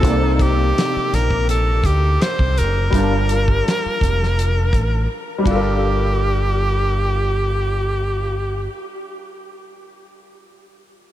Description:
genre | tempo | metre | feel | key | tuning
R&B, neo-soul | 83 BPM | 4/4 | swing 54% on 16ths | G minor | A4 = 440 Hz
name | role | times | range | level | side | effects
breathy tenor saxophone | melody | 0.0-8.7 s | G4 to C5 | -22 LUFS | equal | none
clear baby grand piano | accompaniment | 0.0-11.1 s | C3 to A5 | -24 LUFS | left 1 dB | ensemble chorus
deep dub fingered electric bass | bass | 0.0-8.7 s | F1 to D2 | -19 LUFS | equal | none
warm soul drum kit | drums | 0.0-5.6 s | finger snaps, hi-hat, kick drum, ride cymbal, snare drum | -22 LUFS | equal | none
room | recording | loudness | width
moderate huge ambient reverb, RT60 6.3 s | dreamy mix soaked in reverb | -16 LUFS | side -13 dB against mid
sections
0.0-5.8 A section; 5.8-8.7 B section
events
silent gap 5.1-5.8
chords
0.0 Cm9; 2.9 Gm9

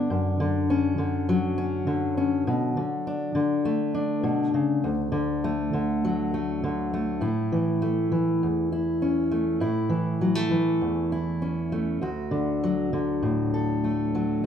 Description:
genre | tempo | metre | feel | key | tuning
folk | 100 BPM | 4/4 | straight | D major | A4 = 440 Hz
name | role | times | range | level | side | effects
fingerpicked steel-string acoustic guitar | solo | 0.0-14.5 s | D2 to A4 | -23 LUFS | left 1 dB | none
room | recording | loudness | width
moderate large studio reverb, RT60 1.1 s | band playing live in one room | -23 LUFS | side -8 dB against mid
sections
0.0-7.2 A section; 7.2-14.5 B section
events
none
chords
0.1 Dmaj7/F#; 2.5 Bm7; 4.8 D; 7.2 A; 12.0 D

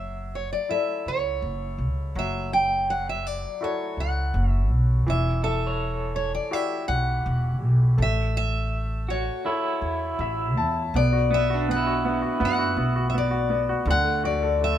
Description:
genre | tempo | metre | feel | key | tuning
acoustic folk-pop ballad | 82 BPM | 4/4 | straight | unclear | A4 = 441 Hz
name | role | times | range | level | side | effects
picked steel-string acoustic guitar | melody | 0.0-14.8 s | C#5 to G5 | -27 LUFS | left 2 dB | none
bright upright piano | accompaniment | 0.0-14.8 s | D3 to A5 | -30 LUFS | right 1 dB | none
upright bass | bass | 0.0-14.8 s | E1 to F#2 | -25 LUFS | equal | none
electric guitar through a small old amp | arpeggios | 5.4-13.1 s | B3 to C#5 | -28 LUFS | right 2 dB | tremolo
room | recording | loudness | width
light reverb | minimal, uncompressed stereo recording | -22 LUFS | side -11 dB against mid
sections
0.0-10.9 A section; 10.9-14.8 B section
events
none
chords
0.0 F#m7; 5.1 Emadd9; 8.0 A; 10.9 Bm; 13.9 D

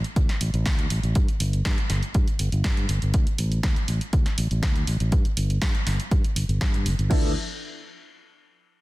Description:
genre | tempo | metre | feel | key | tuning
filtered disco house | 121 BPM | 4/4 | straight | D dorian | A4 = 442 Hz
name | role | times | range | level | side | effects
punchy analog drum machine | drums | 0.0-7.2 s | crash cymbal, hi-hat, snare drum | -31 LUFS | equal | sidechain pumping on hats, sidechain pumping on cymbals
fingered electric bass | bass | 0.2-7.3 s | G1 to G2 | -25 LUFS | equal | sidechain pumping, low-pass filter
electronic kick drum | drums | 0.2-7.2 s | none | -23 LUFS | equal | none
warm grand piano | accompaniment | 7.1-7.3 s | F3 to A4 | -31 LUFS | equal | phaser, sidechain pumping, low-pass filter
room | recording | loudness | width
digital ambience | dense, heavily limited modern master | -21 LUFS | side -19 dB against mid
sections
0.0-7.1 A section; 7.1-8.8 B section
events
filter sweep on fingered electric bass 0.0-7.1; filter sweep 0.0-7.1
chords
0.0 D5; 1.2 N.C.; 3.1 D5; 5.1 N.C.; 7.1 Dm69

